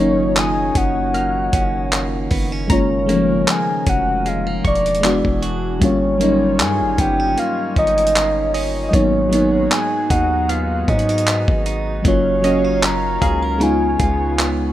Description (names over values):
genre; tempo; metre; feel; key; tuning
contemporary R&B; 77 BPM; 4/4; swing 54% on 16ths; unclear; A4 = 440 Hz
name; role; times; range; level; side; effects
soft octave-layered synth lead; melody; 0.0-14.7 s; C#5 to A#5; -20 LUFS; equal; chorus
mellow FM electric piano; accompaniment; 0.0-14.7 s; E#3 to F#4; -20 LUFS; left 1 dB; chorus
chorused pulse-width pad; sustained chords; 0.0-14.7 s; C#3 to E#5; -29 LUFS; right 2 dB; none
direct-recorded clean electric guitar; arpeggios; 0.0-14.7 s; F#2 to A#4; -29 LUFS; right 4 dB; tape echo
long sustained 808-style bass; bass; 0.0-14.7 s; E1 to G#2; -23 LUFS; equal; none
dusty soul sampler-style drum kit; drums; 0.4-14.6 s; handclaps, hi-hat, kick drum; -20 LUFS; equal; none
glassy wavetable pluck; texture; 0.4-14.0 s; D#5 to E#6; -30 LUFS; right 1 dB; chorus, tape echo
room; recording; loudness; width
light reverb; rough home demo mix; -15 LUFS; side -13 dB against mid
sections
0.0-14.7 A section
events
none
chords
0.0 D#m7/F#; 2.7 F#maj7; 5.0 E9; 5.8 D#7/G; 8.9 G#m7; 12.1 D#m7/F#; 13.6 C#7